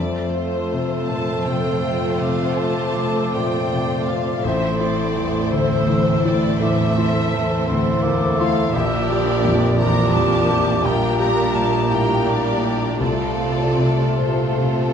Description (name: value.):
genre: classical, romantic movement for piano and orchestra.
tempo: 49-58 BPM (dotted quarters).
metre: 12/8.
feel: rubato.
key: F major.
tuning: A4 = 440 Hz.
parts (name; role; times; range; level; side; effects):
clear grand piano; melody; 0.0-14.9 s; A1 to G4; -22 LUFS; left 3 dB; none.
warm symphonic violin section; melody; 0.0-14.9 s; C5 to Bb5; -28 LUFS; left 4 dB; none.
clear symphonic violin section; second line; 0.0-14.9 s; E4 to C5; -30 LUFS; left 1 dB; none.
warm clarinet; second line; 0.0-14.9 s; F4 to D5; -31 LUFS; right 1 dB; none.
dark bassoon; accompaniment; 0.0-14.9 s; G3 to C4; -27 LUFS; right 3 dB; none.
warm symphonic viola section; accompaniment; 0.0-14.9 s; F3 to D4; -28 LUFS; right 2 dB; none.
mellow French horn section; sustained chords; 0.0-14.9 s; A3 to C5; -27 LUFS; equal; none.
rich symphonic cello section; bass; 0.0-14.9 s; F2 to C3; -25 LUFS; right 4 dB; none.
silver concert flute; second line; 2.2-14.9 s; A5 to E6; -28 LUFS; equal; none.
room: moderate concert hall reverb, RT60 1.8 s.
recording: dark, warm production.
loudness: -17 LUFS.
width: side -7 dB against mid.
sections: 0.0-14.9 A section.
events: none.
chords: 0.0 F; 4.4 Am; 8.7 Bb6; 10.8 Gm/Bb; 13.0 F/C.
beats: 1.09 2.21 3.35 | 4.44 5.52 6.61 7.67 | 8.74 9.78 10.83 11.90 | 13.00 14.21.